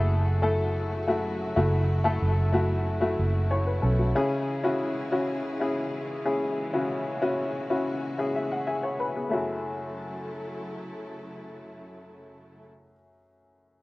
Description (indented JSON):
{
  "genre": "pop",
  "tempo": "93 BPM",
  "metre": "4/4",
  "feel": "straight",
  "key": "F# minor",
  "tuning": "A4 = 438 Hz",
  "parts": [
    { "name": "clear upright piano", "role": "accompaniment", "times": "0.0-13.8 s", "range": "F#2 to B5", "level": "-27 LUFS", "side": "left 2 dB", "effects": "slapback echo" },
    { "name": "warm symphonic string section", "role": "sustained chords", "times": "0.0-12.7 s", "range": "C#3 to A4", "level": "-37 LUFS", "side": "equal", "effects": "none" },
    { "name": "vintage muted fingered electric bass", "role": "bass", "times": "0.0-4.1 s", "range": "F#1 to B1", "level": "-25 LUFS", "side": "right 1 dB", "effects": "none" }
  ],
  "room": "little or no reverb",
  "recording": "recorded outdoors, with no room sound",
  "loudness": "-25 LUFS",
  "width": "side -20 dB against mid",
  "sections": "0.0-9.3 A section; 9.3-11.9 B section",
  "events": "upright piano fill 8.0-9.3",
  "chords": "0.0 F#m7; 4.2 C#m; 9.3 F#m7"
}